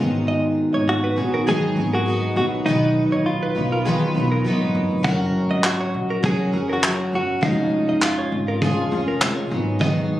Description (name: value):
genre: acoustic pop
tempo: 101 BPM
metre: 4/4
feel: swing 55% on 16ths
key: F# major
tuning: A4 = 440 Hz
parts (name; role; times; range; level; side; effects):
- picked steel-string acoustic guitar; accompaniment; 0.0-10.2 s; G#2 to B4; -22 LUFS; equal; double-tracked left and right, plate reverb
- upright bass; bass; 0.0-10.1 s; E#1 to B1; -27 LUFS; equal; none
- direct-recorded clean electric guitar; arpeggios; 0.3-10.0 s; G#4 to F#5; -29 LUFS; right 2 dB; plate reverb, tape echo
- direct-recorded clean electric guitar; melody; 0.9-9.5 s; D#4 to G#4; -24 LUFS; equal; spring reverb, plate reverb, tape echo
- vintage brush drum kit; drums; 5.0-10.0 s; handclaps, kick drum; -22 LUFS; equal; none
- group handclap; percussion; 5.6-9.4 s; none; -31 LUFS; left 1 dB; none
room: moderate studio reverb, RT60 0.6 s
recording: recorded on a phone in the room, club reverb, compression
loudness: -18 LUFS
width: side -14 dB against mid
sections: 0.0-10.2 A section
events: none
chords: 0.0 G#m7; 2.7 B; 5.0 F#; 7.4 C#/E#; 9.5 G#m7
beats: | 0.28 0.87 1.47 2.06 | 2.66 3.26 3.85 4.45 | 5.04 5.64 6.24 6.83 | 7.43 8.02 8.62 9.21 | 9.81